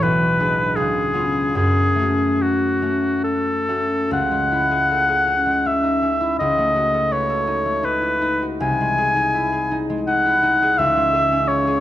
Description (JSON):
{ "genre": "classical, romantic duo for oboe and harp", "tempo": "65-86 BPM", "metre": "3/4", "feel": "rubato", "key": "F# minor, C# minor from 4.1 s", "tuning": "A4 = 444 Hz", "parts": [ { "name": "warm oboe", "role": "melody", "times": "0.0-11.8 s", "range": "F#4 to G#5", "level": "-18 LUFS", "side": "left 1 dB", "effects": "none" }, { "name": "concert harp", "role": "accompaniment", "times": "0.0-11.8 s", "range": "B1 to B4", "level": "-21 LUFS", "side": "left 1 dB", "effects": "none" } ], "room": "moderate recital hall reverb, RT60 1.7 s", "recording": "close, detailed microphones", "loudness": "-17 LUFS", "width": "side -12 dB against mid", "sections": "0.0-4.1 A section; 4.1-11.8 B section", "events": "none", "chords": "0.0 G#dim/B; 0.8 C#7; 1.6 F#m; 4.1 C#m; 6.4 D#m7b5/C#; 8.6 G#/B#; 10.8 C#m", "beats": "0.03 0.76 | 1.56 2.41 3.24 | 4.12 4.91 5.66 | 6.39 7.12 7.83 | 8.61 9.34 10.07 | 10.79 11.50" }